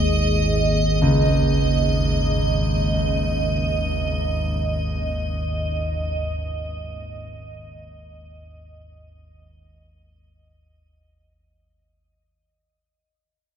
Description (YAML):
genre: dark ambient drone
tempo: free time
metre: none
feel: none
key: unclear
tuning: A4 = 440 Hz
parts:
  - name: dark analog pad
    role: sustained chords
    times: 0.0-11.9 s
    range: G#2 to D#5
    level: -29 LUFS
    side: right 1 dB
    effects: chorus, shimmer reverb
  - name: dark concert grand piano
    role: arpeggios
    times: 0.0-11.9 s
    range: C#2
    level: -24 LUFS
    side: right 1 dB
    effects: analog delay
  - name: analog drone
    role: drone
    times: 0.0-12.0 s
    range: G#1 to D#2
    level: -24 LUFS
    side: equal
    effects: chorus
  - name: icy glass pad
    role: texture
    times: 0.0-11.9 s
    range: D#5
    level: -26 LUFS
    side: right 2 dB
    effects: chorus, built-in reverb, shimmer reverb
room: wet echo chamber reverb, RT60 2.3 s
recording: echo-heavy mix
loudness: -19 LUFS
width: side -8 dB against mid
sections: 0.0-11.9 A section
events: fade-out on analog synth pad 0.0-11.9; fade-out 0.0-11.9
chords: 0.0 D#sus4/G#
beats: free time